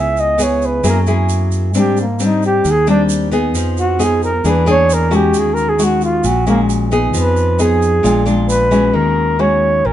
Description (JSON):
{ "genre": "bossa nova", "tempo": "133 BPM", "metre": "4/4", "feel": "straight", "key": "Eb minor", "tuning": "A4 = 440 Hz", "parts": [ { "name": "breathy flugelhorn", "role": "melody", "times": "0.0-9.9 s", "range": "Bb3 to Fb5", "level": "-15 LUFS", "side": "right 1 dB", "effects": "none" }, { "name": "nylon-string guitar", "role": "accompaniment", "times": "0.0-9.9 s", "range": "Ab2 to Ab4", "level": "-16 LUFS", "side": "left 2 dB", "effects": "none" }, { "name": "fingered electric bass", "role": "bass", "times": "0.0-9.9 s", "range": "Bb1 to Ab2", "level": "-18 LUFS", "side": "equal", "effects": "none" }, { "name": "egg shaker", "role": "percussion", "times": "0.2-8.9 s", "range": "none", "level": "-29 LUFS", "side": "right 7 dB", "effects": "none" } ], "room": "light reverb", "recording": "band playing live in one room, nothing above 10.6 kHz", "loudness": "-12 LUFS", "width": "side -11 dB against mid", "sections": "0.0-8.9 A section", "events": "flugelhorn solo 0.0-8.9", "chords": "0.0 Dbm7; 0.8 Gb9; 1.7 Abmaj7#11; 3.5 Fm7b5; 4.4 E7#11; 5.3 Ebm7; 7.1 Fm7b5; 8.0 Bb7; 8.9 Ebm7", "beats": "0.39 0.84 1.29 | 1.74 2.19 2.64 3.09 | 3.54 3.99 4.44 4.89 | 5.34 5.79 6.24 6.69 | 7.14 7.59 8.05 8.50 | 8.95 9.40 9.85" }